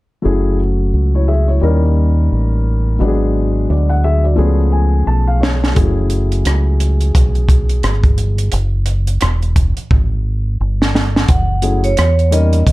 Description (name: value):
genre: hip hop, jazz-hop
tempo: 87 BPM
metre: 4/4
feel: swing 60% on 16ths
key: F# minor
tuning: A4 = 440 Hz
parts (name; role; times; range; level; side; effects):
- dark upright piano; accompaniment; 0.2-12.6 s; E#3 to A5; -19 LUFS; left 3 dB; none
- deep dub fingered electric bass; bass; 0.3-12.7 s; E1 to E2; -14 LUFS; equal; none
- compact cocktail drum kit; drums; 5.4-12.7 s; hi-hat, kick drum, rim click, snare drum; -15 LUFS; equal; none
- vibraphone with medium hard mallets; melody; 11.3-12.7 s; C#5 to F#5; -19 LUFS; right 3 dB; none
room: light reverb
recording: dark, warm production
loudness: -12 LUFS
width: side -19 dB against mid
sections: 0.2-11.3 A section; 11.3-12.7 B section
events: drum fill 4.4-5.8, 9.9-11.3; upright piano fill 4.4-5.8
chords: 0.2 F#m9; 1.6 D#7; 3.0 G#m7b5; 4.4 C#7b13; 5.8 F#m9